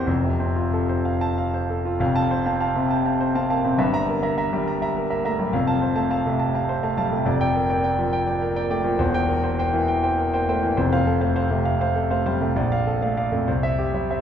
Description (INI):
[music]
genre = classical, virtuoso piano study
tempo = 68 BPM (dotted quarters)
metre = 6/8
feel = rubato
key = F major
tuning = A4 = 439 Hz
[part]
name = clear concert grand piano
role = solo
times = 0.0-14.2 s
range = E1 to Bb5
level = -20 LUFS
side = equal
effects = none
[sound]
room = wet recital hall reverb, RT60 1.7 s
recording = recorded in a church or concert hall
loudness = -20 LUFS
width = side -8 dB against mid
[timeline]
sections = 0.0-2.0 A section; 2.0-14.2 B section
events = none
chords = 0.1 F; 3.8 Edim/G; 5.5 F; 7.3 Gm7/F; 9.0 C7/E; 10.8 F; 12.6 Bbmaj7; 13.5 C